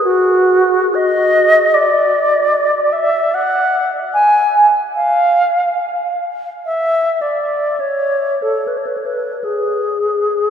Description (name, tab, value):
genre	classical, free, expressive piece for unaccompanied alto flute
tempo	56-77 BPM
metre	3/4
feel	rubato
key	unclear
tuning	A4 = 439 Hz
part	wooden-headed alto flute	solo	0.0-10.5 s	F#4 to G#5	-12 LUFS	equal	none
room	wet cathedral reverb, RT60 5.2 s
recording	none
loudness	-12 LUFS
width	side -8 dB against mid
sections	0.0-10.5 A section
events	none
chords	none